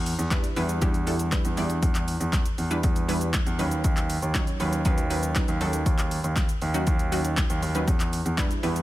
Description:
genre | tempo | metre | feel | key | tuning
dance-pop | 119 BPM | 4/4 | straight | E dorian | A4 = 441 Hz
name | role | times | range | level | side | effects
warm grand piano | bass | 0.0-8.8 s | D#2 to E2 | -27 LUFS | equal | sidechain pumping
punchy analog drum machine | drums | 0.1-8.8 s | handclaps, hi-hat, kick drum, shaker, snare drum | -26 LUFS | equal | overdrive
analog pluck | accompaniment | 0.3-8.8 s | F#3 to D5 | -30 LUFS | right 1 dB | chorus, sidechain pumping
room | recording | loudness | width
little or no reverb | none | -23 LUFS | side -16 dB against mid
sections
0.0-8.8 A section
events
none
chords
0.0 Em7; 3.6 Badd9/D#; 7.9 Em7

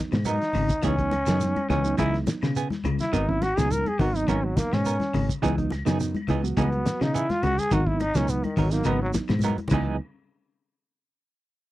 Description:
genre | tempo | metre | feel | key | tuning
afrobeat | 105 BPM | 4/4 | straight | C# dorian | A4 = 440 Hz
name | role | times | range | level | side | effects
reed electric piano | accompaniment | 0.0-10.0 s | F#3 to F#4 | -31 LUFS | right 4 dB | fast tremolo
clean electric guitar | arpeggios | 0.1-9.9 s | B2 to E3 | -31 LUFS | left 4 dB | spring reverb
fingered electric bass | bass | 0.1-10.0 s | G#1 to C#3 | -26 LUFS | equal | none
cloth-damped thuddy drum kit | drums | 0.1-9.9 s | crash cymbal, hi-hat, kick drum, snare drum | -30 LUFS | equal | none
claves | percussion | 0.1-9.9 s | none | -45 LUFS | left 3 dB | none
shekere | percussion | 0.1-9.8 s | none | -36 LUFS | right 3 dB | none
growling trombone | melody | 0.3-9.1 s | D#3 to A#4 | -27 LUFS | equal | none
semi-hollow electric guitar | stabs | 0.3-10.0 s | E3 to A#4 | -30 LUFS | right 6 dB | tremolo
congas | percussion | 0.3-9.9 s | none | -32 LUFS | left 2 dB | none
room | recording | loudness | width
little or no reverb | dry, close 1970s-style studio recording | -22 LUFS | side -16 dB against mid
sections
0.0-10.0 A section; 10.0-11.7 B section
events
trombone solo 0.0-10.0; drum fill 0.3-0.8, 9.3-10.0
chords
0.0 G#m9; 0.8 C#m9; 3.1 G#m9; 5.4 C#m9; 7.7 G#m9; 9.7 C#m9; 10.0 N.C.

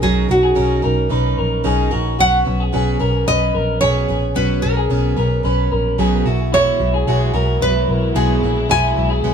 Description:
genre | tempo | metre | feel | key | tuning
indie pop | 111 BPM | 4/4 | straight | unclear | A4 = 441 Hz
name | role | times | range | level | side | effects
nylon-string guitar | melody | 0.0-9.3 s | F#4 to G#5 | -18 LUFS | right 1 dB | none
picked plugged-in steel-string acoustic guitar | accompaniment | 0.0-9.3 s | B2 to B4 | -23 LUFS | right 6 dB | none
electric guitar through a small old amp | arpeggios | 0.0-9.3 s | E4 to B4 | -21 LUFS | left 2 dB | harmonic tremolo, tape echo
vintage muted picked electric bass | bass | 0.0-9.3 s | A#1 to B1 | -19 LUFS | left 1 dB | none
dark studio string section | sustained chords | 6.5-9.3 s | F#3 to E4 | -27 LUFS | left 2 dB | none
room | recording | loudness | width
moderate studio reverb, RT60 0.8 s | band playing live in one room | -14 LUFS | side -7 dB against mid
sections
0.0-9.3 A section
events
none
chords
0.0 D#m7; 2.2 F#sus4; 6.3 Eadd9

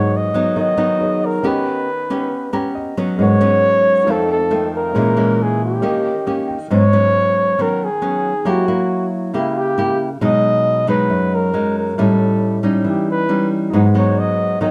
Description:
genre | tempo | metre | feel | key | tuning
bossa nova | 137 BPM | 4/4 | straight | G# minor | A4 = 439 Hz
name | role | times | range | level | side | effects
breathy flugelhorn | melody | 0.0-14.7 s | E4 to D#5 | -20 LUFS | equal | none
nylon-string guitar | accompaniment | 0.0-14.7 s | F2 to G4 | -19 LUFS | equal | none
warm concert grand piano | accompaniment | 0.0-6.7, 13.7-14.7 s | C#4 to A#5 | -28 LUFS | equal | none
room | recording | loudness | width
wet studio reverb, RT60 0.9 s | band playing live in one room | -17 LUFS | mono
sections
0.0-6.7 A section; 6.7-14.7 A section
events
grand piano fill 2.3-3.2, 6.0-6.7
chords
0.0 G#m7; 1.4 D#7b13; 3.2 G#m11; 4.1 F7; 5.0 A#m7b5; 5.8 D#7; 6.7 G#m7; 8.5 F#7b9; 10.2 B6; 12.0 A7#11; 13.7 G#m7

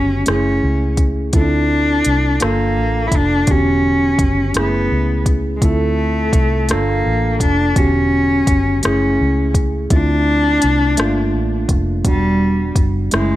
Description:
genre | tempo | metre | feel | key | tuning
slow six-eight R&B | 56 BPM (dotted quarters) | 6/8 | straight | unclear | A4 = 439 Hz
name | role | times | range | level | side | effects
rich cello | melody | 0.0-13.4 s | G3 to E4 | -17 LUFS | left 1 dB | none
tine electric piano | accompaniment | 0.0-13.4 s | D3 to A4 | -21 LUFS | right 2 dB | none
vintage muted fingered electric bass | bass | 0.0-13.4 s | E1 to D2 | -19 LUFS | equal | none
smooth R&B drum kit | drums | 0.3-13.3 s | hi-hat, kick drum, rim click | -18 LUFS | equal | none
room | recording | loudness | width
digital ambience | none | -13 LUFS | side -15 dB against mid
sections
0.0-13.4 A section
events
none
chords
0.3 F#m9; 1.3 Dm9; 2.4 Gm9; 3.5 Em9; 4.5 F#m9; 5.6 Dm9; 6.7 Gm9; 7.8 Em9; 8.8 F#m9; 9.9 Dm9; 11.0 Gm9; 12.0 Em9

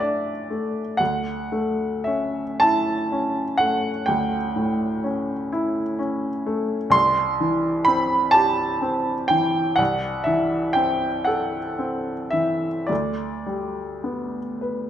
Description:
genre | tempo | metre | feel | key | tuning
classical, romantic nocturne for solo piano | 35-43 BPM (dotted quarters) | 12/8 | rubato | unclear | A4 = 440 Hz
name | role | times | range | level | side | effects
warm baby grand piano | solo | 0.0-14.9 s | C2 to C6 | -20 LUFS | equal | none
room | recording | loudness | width
wet recital hall reverb, RT60 1.5 s | none | -20 LUFS | side -10 dB against mid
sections
0.0-14.9 A section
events
none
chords
0.0 D; 1.0 A7/D; 6.9 C; 9.8 Am/C; 12.9 G/D

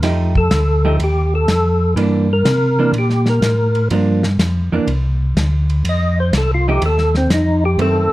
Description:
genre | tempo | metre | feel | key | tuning
soul jazz organ trio | 124 BPM | 4/4 | swing 68% on 8ths | unclear | A4 = 440 Hz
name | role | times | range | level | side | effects
vintage hollow-body jazz guitar | accompaniment | 0.0-8.1 s | D#3 to G4 | -20 LUFS | right 3 dB | none
mellow tonewheel organ | bass | 0.0-8.1 s | C2 to C3 | -16 LUFS | equal | chorus vibrato, slow rotary speaker
warm soul drum kit | drums | 0.0-7.9 s | hi-hat, kick drum, ride cymbal, snare drum | -22 LUFS | equal | none
percussive tonewheel organ | melody | 0.4-8.1 s | C4 to Eb5 | -18 LUFS | equal | slow rotary speaker, chorus vibrato
room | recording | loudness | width
light reverb | dark, warm production | -13 LUFS | side -16 dB against mid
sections
0.0-8.1 A section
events
tonewheel organ solo 0.0-8.1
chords
0.0 F9; 2.0 C9; 3.9 Gm7; 4.9 Csus2; 5.8 F9

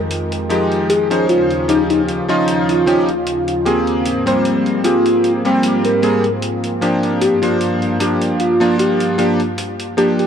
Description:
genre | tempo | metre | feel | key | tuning
vaporwave | 76 BPM | 4/4 | swing 54% on 16ths | unclear | A4 = 444 Hz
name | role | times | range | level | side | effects
lush unison pad | sustained chords | 0.0-10.3 s | Eb2 to G5 | -23 LUFS | right 1 dB | chorus
electronic hi-hat | drums | 0.1-10.3 s | none | -28 LUFS | equal | none
bright electric grand piano | accompaniment | 0.5-10.3 s | F3 to C5 | -16 LUFS | equal | analog chorus, vintage 12-bit sampler grit, tape echo
warm velvety synth lead | melody | 0.9-10.3 s | Eb4 to Bb4 | -18 LUFS | equal | chorus, tape echo
room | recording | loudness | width
light reverb | dark, warm production | -14 LUFS | side -8 dB against mid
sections
0.0-10.3 A section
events
none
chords
0.0 Fm9; 1.3 Eb9; 4.1 Abmaj9; 7.2 Gm7

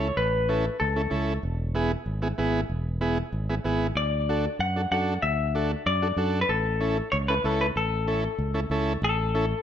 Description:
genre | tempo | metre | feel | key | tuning
latin, cumbia | 190 BPM | 4/4 | straight | A major | A4 = 441 Hz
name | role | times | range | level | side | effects
semi-hollow electric guitar | melody | 0.0-1.2, 4.0-9.6 s | A4 to F#5 | -27 LUFS | left 3 dB | spring reverb
overdriven combo organ | accompaniment | 0.0-9.5 s | B3 to A4 | -29 LUFS | right 1 dB | spring reverb
fingered electric bass | bass | 0.0-9.5 s | E1 to F#2 | -28 LUFS | equal | none
room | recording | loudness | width
light reverb | close, detailed microphones | -24 LUFS | side -9 dB against mid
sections
0.0-9.0 A section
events
none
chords
0.0 A; 1.4 E; 4.0 D; 6.5 A

